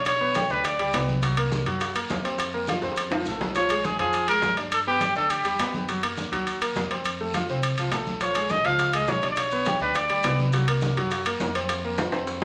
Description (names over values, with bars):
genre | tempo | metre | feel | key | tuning
latin, salsa | 206 BPM | 4/4 | straight | unclear | A4 = 445 Hz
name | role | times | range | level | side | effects
clear trumpet | melody | 0.0-1.1, 3.6-5.7, 8.2-10.4 s | G4 to F5 | -26 LUFS | equal | none
bright grand piano | accompaniment | 0.0-12.4 s | F3 to G5 | -32 LUFS | equal | none
upright bass | bass | 0.0-12.4 s | Bb1 to G2 | -34 LUFS | equal | none
bongos | percussion | 0.1-3.6, 8.2-12.4 s | none | -40 LUFS | equal | none
congas | percussion | 0.1-12.4 s | none | -38 LUFS | equal | none
guiro | percussion | 0.1-12.4 s | none | -43 LUFS | equal | none
maracas | percussion | 0.1-12.4 s | none | -43 LUFS | equal | none
timbales | percussion | 0.1-12.4 s | none | -32 LUFS | equal | none
room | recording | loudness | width
wet large studio reverb, RT60 1.1 s | none | -25 LUFS | mono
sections
0.0-3.6 A section; 3.6-12.4 A section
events
drum fill 2.8-3.6, 12.0-12.4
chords
0.1 G/B; 1.2 Gbmaj7#11; 2.4 Fsus4; 3.0 F; 3.6 Bbm7; 4.7 G; 5.9 Cm7b5; 7.0 F; 8.2 Bbm7; 9.4 G/B; 10.5 Gbmaj7#11; 11.7 Fsus4